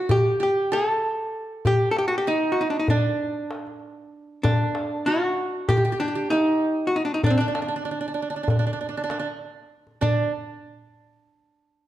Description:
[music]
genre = Turkish makam ensemble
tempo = 193 BPM (eighths)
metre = 9/8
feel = straight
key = D makam hicaz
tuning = A4 = 442 Hz
[part]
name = archtop guitar, miked and amplified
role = melody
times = 0.0-10.3 s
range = C4 to A4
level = -24 LUFS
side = left 1 dB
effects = none
[part]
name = qanun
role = second line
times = 0.0-10.3 s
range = C4 to A4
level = -28 LUFS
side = right 5 dB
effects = none
[part]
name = darbuka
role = percussion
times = 0.1-10.3 s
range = none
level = -24 LUFS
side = left 1 dB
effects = none
[sound]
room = wet recital hall reverb, RT60 1.3 s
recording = dark, warm production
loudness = -21 LUFS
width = side -13 dB against mid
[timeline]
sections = 0.0-10.0 A section; 10.0-11.9 B section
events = none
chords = none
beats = 0.10 0.41 0.72 1.03 1.34 | 1.65 1.96 2.27 2.58 2.89 3.20 3.51 3.82 4.13 | 4.44 4.75 5.06 5.37 5.68 5.99 6.30 6.61 6.92 | 7.24 7.54 7.86 8.16 8.47 8.79 9.10 9.41 9.72 | 10.03

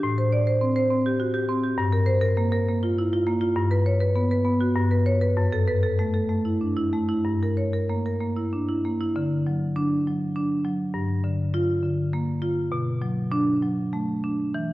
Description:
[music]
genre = classical, contemporary piece for solo marimba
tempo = 100 BPM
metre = 3/4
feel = rubato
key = unclear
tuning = A4 = 437 Hz
[part]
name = marimba with medium hard mallets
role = solo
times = 0.0-14.7 s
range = F#2 to D5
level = -22 LUFS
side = equal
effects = none
[sound]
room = moderate scoring stage reverb, RT60 1.7 s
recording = worn, warbling old tape, cassette tape, warbly pitch drift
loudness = -22 LUFS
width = side -17 dB against mid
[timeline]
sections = 0.0-9.2 A section; 9.2-14.7 B section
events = none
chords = 0.0 Am7; 1.8 Gm7; 3.6 Gmaj7#11; 4.8 G; 5.4 F#m7; 7.2 Gm6; 9.2 D; 10.9 Gm7; 12.7 Bm7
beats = | 0.02 0.61 1.20 | 1.78 2.37 2.97 | 3.57 4.17 4.76 | 5.37 5.99 6.61 | 7.25 7.89 8.52 | 9.16 9.76 10.36 | 10.95 11.54 12.13 | 12.71 13.31 13.91 | 14.53

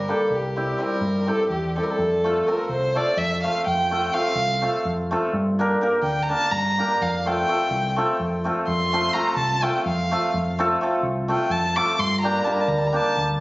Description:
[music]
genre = balkan folk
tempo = 252 BPM (eighths)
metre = 7/8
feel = straight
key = F major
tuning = A4 = 441 Hz
[part]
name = dark violin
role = melody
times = 0.0-13.2 s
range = G4 to D6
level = -23 LUFS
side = equal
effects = none
[part]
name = hammered dulcimer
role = accompaniment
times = 0.0-13.4 s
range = G3 to Bb4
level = -24 LUFS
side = equal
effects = none
[part]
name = fingered electric bass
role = bass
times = 0.0-13.4 s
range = G1 to G2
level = -27 LUFS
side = equal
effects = none
[sound]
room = moderate recital hall reverb, RT60 1.3 s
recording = recorded on a phone in the room, studio reverb, nothing above 7.6 kHz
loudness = -20 LUFS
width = side -20 dB against mid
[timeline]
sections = 0.0-13.4 A section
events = violin solo 0.0-13.4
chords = 0.3 C; 2.0 F; 5.3 Gm; 7.0 F; 12.0 Gm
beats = 0.08 | 0.32 0.56 0.80 1.04 1.27 1.51 1.75 | 1.99 2.23 2.47 2.71 2.95 3.19 3.43 | 3.67 3.90 4.14 4.38 4.62 4.86 5.10 | 5.34 5.58 5.82 6.06 6.29 6.53 6.77 | 7.01 7.25 7.49 7.73 7.96 8.20 8.44 | 8.68 8.92 9.15 9.39 9.63 9.87 10.11 | 10.34 10.58 10.82 11.05 11.29 11.53 11.76 | 12.00 12.24 12.47 12.71 12.95 13.18

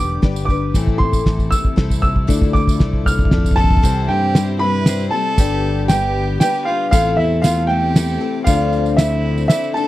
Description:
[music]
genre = indie folk with a building arrangement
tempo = 117 BPM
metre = 3/4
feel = straight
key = C major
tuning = A4 = 438 Hz
[part]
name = dark upright piano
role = melody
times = 0.0-9.9 s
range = E5 to F6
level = -21 LUFS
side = right 1 dB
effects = none
[part]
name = picked twelve-string acoustic guitar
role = accompaniment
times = 0.0-9.9 s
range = A2 to C5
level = -23 LUFS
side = left 8 dB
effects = none
[part]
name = warm chamber string section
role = sustained chords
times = 0.0-9.9 s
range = C3 to G4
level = -29 LUFS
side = right 1 dB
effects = none
[part]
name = fingered electric bass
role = bass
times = 0.0-9.5 s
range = E1 to G2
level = -20 LUFS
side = equal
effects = none
[part]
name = cloth-damped thuddy drum kit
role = drums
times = 0.2-9.6 s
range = kick drum, ride cymbal, snare drum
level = -15 LUFS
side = equal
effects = none
[part]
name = tambourine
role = percussion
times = 0.4-9.8 s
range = none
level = -32 LUFS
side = right 11 dB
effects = none
[part]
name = rich fiddle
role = second line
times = 3.6-9.9 s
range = E4 to B4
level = -26 LUFS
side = right 5 dB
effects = none
[sound]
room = little or no reverb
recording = dry, close 1970s-style studio recording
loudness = -14 LUFS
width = side -15 dB against mid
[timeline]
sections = 0.0-3.8 A section; 3.8-9.9 B section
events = build-up 0.0-3.8; drum fill 0.0-3.8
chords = 0.0 G; 0.7 Am; 2.3 Dmadd9; 3.8 C; 5.4 G; 6.9 Am; 8.5 Dmadd9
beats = 0.23 | 0.74 1.26 1.77 | 2.29 2.80 3.32 | 3.83 4.35 4.86 | 5.38 5.89 6.41 | 6.92 7.43 7.95 | 8.46 8.98 9.49

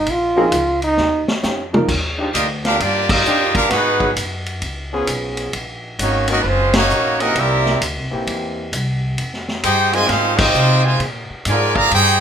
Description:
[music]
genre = jazz, big band swing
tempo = 132 BPM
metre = 4/4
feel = swing 65% on 8ths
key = Eb major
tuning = A4 = 438 Hz
[part]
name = clear trombone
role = melody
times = 0.0-1.3 s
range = Eb4 to F4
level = -17 LUFS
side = right 1 dB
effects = none
[part]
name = upright bass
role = bass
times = 0.0-12.2 s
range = Gb1 to C3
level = -23 LUFS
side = equal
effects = none
[part]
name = vintage drum kit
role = drums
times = 0.1-12.1 s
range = crash cymbal, hi-hat, kick drum, ride cymbal, snare drum, toms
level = -22 LUFS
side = equal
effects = none
[part]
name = warm upright piano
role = accompaniment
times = 0.4-1.9 s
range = F3 to Bb4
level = -18 LUFS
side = equal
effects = none
[part]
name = warm trombone section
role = sustained chords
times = 0.4-10.5 s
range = Eb3 to Bb4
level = -24 LUFS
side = left 1 dB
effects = none
[part]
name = brilliant trumpet section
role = melody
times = 2.3-12.2 s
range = Ab3 to Bb5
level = -16 LUFS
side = equal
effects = none
[part]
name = clear trombone section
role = second line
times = 2.3-12.2 s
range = C3 to G4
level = -22 LUFS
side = right 3 dB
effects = none
[sound]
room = moderate large studio reverb, RT60 0.8 s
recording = minimal, uncompressed stereo recording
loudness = -15 LUFS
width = side -8 dB against mid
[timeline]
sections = 0.0-1.9 A section; 1.9-12.2 B section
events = trombone solo 0.0-1.9; drum fill 1.0-1.9; band accent 3.0, 6.7, 10.3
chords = 0.1 Bbm7; 1.0 Eb9; 1.9 Ebmaj9; 3.7 Abm7; 4.6 Db7; 5.5 Gb6; 7.4 C7; 9.2 Fm7; 11.0 Bb7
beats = | 0.07 0.52 0.98 1.44 | 1.89 2.35 2.80 3.26 | 3.71 4.17 4.63 5.08 | 5.54 5.99 6.45 6.91 | 7.36 7.82 8.27 8.73 | 9.18 9.64 10.10 10.55 | 11.01 11.46 11.92

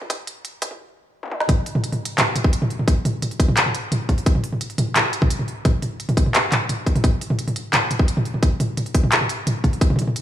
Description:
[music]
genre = drum and bass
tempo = 173 BPM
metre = 4/4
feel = half-time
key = none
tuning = none
[part]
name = organic electronic drum kit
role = drums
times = 0.0-10.2 s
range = handclaps, hi-hat, snare drum, toms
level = -20 LUFS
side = equal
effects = high-pass filter on hats, small room ambience, high-pass filter on toms, high-pass filter on snare
[part]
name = electronic kick drum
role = drums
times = 0.1-9.9 s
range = none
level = -18 LUFS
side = equal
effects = overdrive, high-pass filter on kick, small room ambience
[sound]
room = light reverb, digital ambience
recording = high-pass filter, studio reverb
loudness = -18 LUFS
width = side -11 dB against mid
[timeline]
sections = 0.0-1.5 A section; 1.5-10.2 B section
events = build-up 0.0-1.5; filter sweep 0.0-1.5; drum fill 1.2; drop 1.5-10.2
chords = none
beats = | 0.10 0.45 0.80 1.14 | 1.49 1.84 2.18 2.53 | 2.88 3.22 3.57 3.92 | 4.26 4.61 4.96 5.30 | 5.65 6.00 6.34 6.69 | 7.04 7.38 7.73 8.08 | 8.43 8.77 9.12 9.47 | 9.81 10.16

